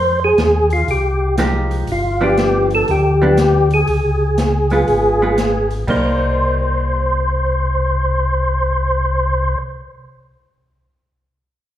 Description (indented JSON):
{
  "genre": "soul jazz organ trio",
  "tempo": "120 BPM",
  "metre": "4/4",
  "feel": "swing 66% on 8ths",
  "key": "C minor",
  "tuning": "A4 = 440 Hz",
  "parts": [
    { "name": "percussive tonewheel organ", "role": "melody", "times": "0.0-9.6 s", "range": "F4 to C5", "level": "-16 LUFS", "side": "equal", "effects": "slow rotary speaker, chorus vibrato" },
    { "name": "mellow tonewheel organ", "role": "bass", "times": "0.0-9.6 s", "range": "G1 to F2", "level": "-19 LUFS", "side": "equal", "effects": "chorus vibrato, slow rotary speaker" },
    { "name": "open jazz drum kit", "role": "drums", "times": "0.4-6.0 s", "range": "crash cymbal, hi-hat, kick drum, snare drum", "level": "-25 LUFS", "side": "equal", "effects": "none" },
    { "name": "vintage hollow-body jazz guitar", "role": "accompaniment", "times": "1.4-9.6 s", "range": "F3 to G4", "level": "-20 LUFS", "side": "right 2 dB", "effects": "none" }
  ],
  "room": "wet recital hall reverb, RT60 1.4 s",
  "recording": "recorded in a church or concert hall",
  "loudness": "-14 LUFS",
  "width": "side -12 dB against mid",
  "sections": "0.0-5.9 A section; 5.9-9.9 B section",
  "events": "none",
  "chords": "0.0 Fm9; 1.9 G7; 3.9 Db7; 5.9 Cm7"
}